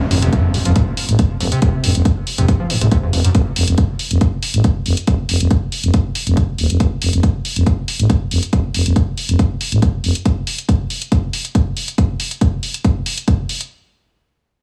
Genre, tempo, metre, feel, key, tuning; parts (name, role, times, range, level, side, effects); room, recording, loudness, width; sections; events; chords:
driving peak-time techno; 139 BPM; 4/4; straight; F phrygian; A4 = 441 Hz
overdriven acid bass; riff; 0.0-3.3 s; F2 to F3; -22 LUFS; equal; distortion, subtle chorus, sidechain pumping, diffuse ambient delay
impact; sound effects; 0.0-1.6 s; -27 LUFS; equal
growling FM bass; bass; 0.1-10.1 s; Eb1 to Ab1; -17 LUFS; equal; sidechain pumping
electronic hi-hat; drums; 0.1-13.7 s; -25 LUFS; equal; studio reverb, sidechain pumping on hats, sidechain pumping on cymbals
electronic kick drum; drums; 0.3-13.4 s; -19 LUFS; equal; studio reverb
little or no reverb; small room ambience; -17 LUFS; mono
0.0-13.7 A section
impact 0.0-1.6; filter sweep on FM bass 0.0-10.3; filter sweep on acid bass 0.0-3.3